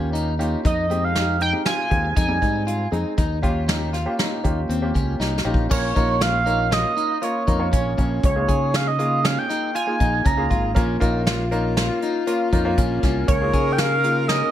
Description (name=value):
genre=progressive instrumental, band music in an uneven meter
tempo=119 BPM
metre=5/4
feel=straight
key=unclear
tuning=A4 = 440 Hz
part: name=warm grand piano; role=accompaniment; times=0.0-14.5 s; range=G3 to Db5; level=-27 LUFS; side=right 1 dB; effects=plate reverb
part: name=electric guitar at the edge of break-up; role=arpeggios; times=0.0-14.5 s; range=C4 to Ab4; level=-27 LUFS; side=left 2 dB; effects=plate reverb
part: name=fingered electric bass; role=bass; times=0.0-14.4 s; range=Ab1 to Db3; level=-24 LUFS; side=equal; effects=none
part: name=soft brush drum kit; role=drums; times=0.1-14.4 s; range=crash cymbal, hi-hat, kick drum, snare drum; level=-23 LUFS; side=equal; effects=none
part: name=sync lead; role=melody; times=0.7-14.5 s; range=Db5 to Bb5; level=-23 LUFS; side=right 3 dB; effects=chorus, plate reverb, digital delay
part: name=breathy alto saxophone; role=second line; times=10.8-14.5 s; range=F4 to Bb4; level=-26 LUFS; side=left 6 dB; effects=plate reverb, digital delay
room=light reverb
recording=none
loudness=-18 LUFS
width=side -11 dB against mid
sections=0.0-5.7 A section; 5.7-14.5 B section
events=drum fill 5.2-5.7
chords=0.0 Eb9; 0.6 Fm7; 3.2 Eb9; 5.7 Bbm; 8.2 Db6; 10.8 Bbm; 13.3 Db6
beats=0.14 | 0.64 1.15 1.66 2.16 2.67 | 3.18 3.68 4.19 4.70 5.20 | 5.71 6.21 6.72 7.22 7.73 | 8.23 8.74 9.24 9.75 10.25 | 10.76 11.26 11.77 12.27 12.78 | 13.28 13.79 14.29